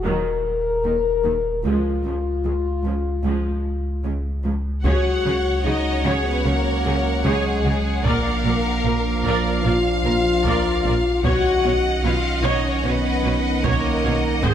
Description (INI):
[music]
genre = cinematic, hybrid orchestral and electronic film score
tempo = 75 BPM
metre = 4/4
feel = straight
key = unclear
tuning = A4 = 441 Hz
[part]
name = rich symphonic viola section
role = accompaniment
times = 0.0-14.5 s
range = Db3 to D5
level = -28 LUFS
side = right 2 dB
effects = none
[part]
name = warm French horn section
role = sustained chords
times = 0.0-14.5 s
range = Ab3 to Bb4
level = -23 LUFS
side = left 3 dB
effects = none
[part]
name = warm sub bass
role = bass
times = 0.0-14.5 s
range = Eb1 to Db2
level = -25 LUFS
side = equal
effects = none
[part]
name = rich symphonic cello section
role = bass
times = 0.1-14.5 s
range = Db2 to Db3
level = -28 LUFS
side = right 3 dB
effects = none
[part]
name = rich studio violin section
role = melody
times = 4.8-14.5 s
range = Ab4 to Gb5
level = -29 LUFS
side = left 2 dB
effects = none
[part]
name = rich symphonic violin section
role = second line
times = 4.8-14.5 s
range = Db5 to Gb5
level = -27 LUFS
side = left 2 dB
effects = none
[part]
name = warm trombone section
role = sustained chords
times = 4.8-14.5 s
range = D#3 to D4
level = -28 LUFS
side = right 5 dB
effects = none
[part]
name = bright symphonic double bass section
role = bass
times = 4.8-14.5 s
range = Ab1 to Db2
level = -28 LUFS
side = right 3 dB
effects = none
[part]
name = taiko ensemble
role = drums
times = 4.8-14.5 s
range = none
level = -27 LUFS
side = equal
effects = none
[sound]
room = moderate scoring stage reverb, RT60 2.1 s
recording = lossy compression artefacts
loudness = -18 LUFS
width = side -9 dB against mid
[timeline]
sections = 0.0-4.8 A section; 4.8-14.5 B section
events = none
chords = 0.0 Ebm; 1.6 Db; 4.8 Dbsus4; 8.0 Bb; 11.2 Badd9